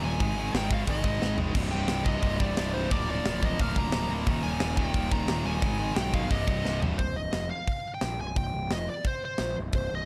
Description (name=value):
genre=heavy metal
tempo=177 BPM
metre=4/4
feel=straight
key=C minor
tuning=A4 = 439 Hz
part: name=high-gain lead guitar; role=melody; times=0.0-10.1 s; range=C5 to Bb5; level=-36 LUFS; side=equal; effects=distortion, delay
part: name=sludgy distorted guitar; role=riff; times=0.0-7.0 s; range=C2 to Bb3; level=-36 LUFS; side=equal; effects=overdrive
part: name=tight distorted guitar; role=riff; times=0.0-7.0 s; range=C2 to Bb3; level=-38 LUFS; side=equal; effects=distortion
part: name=fuzz picked electric bass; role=bass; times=0.0-10.1 s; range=C1 to B1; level=-34 LUFS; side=equal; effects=overdrive
part: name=tight metal drum kit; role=drums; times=0.2-9.8 s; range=crash cymbal, hi-hat, kick drum, snare drum, toms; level=-32 LUFS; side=equal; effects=none
room=small room ambience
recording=dark, warm production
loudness=-28 LUFS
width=mono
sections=0.0-7.0 A section; 7.0-10.1 B section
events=drum fill 1.2-1.6, 6.7-7.0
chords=0.2 Ab5; 1.6 Cm; 2.9 Bb/D; 4.3 Eb; 5.6 Ab5; 6.3 Cm; 7.0 N.C.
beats=| 0.20 0.54 0.88 1.22 | 1.56 1.90 2.24 2.58 | 2.92 3.25 3.59 3.93 | 4.27 4.61 4.95 5.29 | 5.63 5.97 6.31 6.65 | 7.00 7.34 7.68 8.02 | 8.37 8.71 9.05 9.40 | 9.74